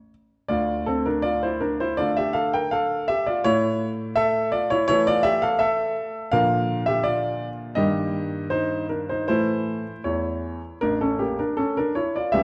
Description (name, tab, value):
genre	classical-period piano sonatina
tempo	75-85 BPM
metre	4/4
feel	rubato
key	D minor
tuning	A4 = 445 Hz
part	clear grand piano	solo	0.0-12.4 s	A1 to G5	-24 LUFS	equal	none
room	moderate recital hall reverb, RT60 1.7 s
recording	dark, warm production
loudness	-24 LUFS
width	mono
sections	0.5-12.4 A section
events	none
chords	0.5 Dm; 3.4 A; 6.3 Bb; 7.8 Eb/G; 9.3 A